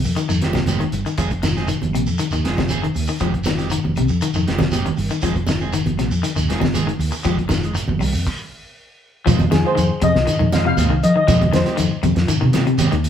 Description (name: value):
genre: afrobeat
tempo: 119 BPM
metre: 4/4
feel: straight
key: F minor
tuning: A4 = 440 Hz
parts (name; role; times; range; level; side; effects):
- electric guitar at the edge of break-up; arpeggios; 0.0-13.1 s; C3 to F3; -23 LUFS; left 5 dB; none
- hollow-body short-scale fingered electric bass; bass; 0.0-13.1 s; F1 to F3; -21 LUFS; equal; none
- shekere; percussion; 0.0-13.1 s; none; -28 LUFS; right 2 dB; none
- electric guitar at the edge of break-up; stabs; 0.1-13.1 s; Eb3 to Ab4; -27 LUFS; right 4 dB; none
- cloth-damped thuddy drum kit; drums; 0.2-13.1 s; crash cymbal, hi-hat, kick drum, snare drum; -25 LUFS; equal; none
- congas; percussion; 0.2-12.9 s; none; -24 LUFS; right 4 dB; none
- steel pan; melody; 9.5-12.5 s; Ab4 to F5; -20 LUFS; left 1 dB; none
room: moderate studio reverb, RT60 0.9 s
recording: band playing live in one room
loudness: -16 LUFS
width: side -9 dB against mid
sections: 0.0-9.3 A section; 9.3-13.1 B section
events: stop 8.3-9.3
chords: 0.0 Abmaj7/F; 1.2 Fm7; 3.2 Abmaj7/F; 5.2 Fm7; 7.2 Abmaj7/F; 9.3 Fm7; 11.3 Abmaj7/F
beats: 0.17 0.67 | 1.18 1.69 2.19 2.70 | 3.21 3.71 4.22 4.72 | 5.23 5.73 6.24 6.74 | 7.25 7.75 8.26 8.76 | 9.27 9.77 10.27 10.78 | 11.28 11.78 12.29 12.79